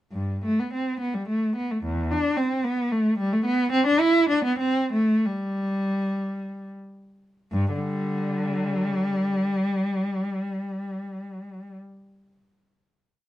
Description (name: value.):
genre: classical, baroque-style suite movement for unaccompanied cello.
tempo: 71-112 BPM.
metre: 3/4.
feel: rubato.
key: G major.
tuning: A4 = 440 Hz.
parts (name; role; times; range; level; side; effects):
rich cello; solo; 0.1-11.7 s; E2 to E4; -23 LUFS; equal; none.
room: light reverb.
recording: dark, warm production.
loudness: -22 LUFS.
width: side -14 dB against mid.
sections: 0.1-7.5 A section; 7.5-12.3 final chord.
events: slowing down 2.7-7.5.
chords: none.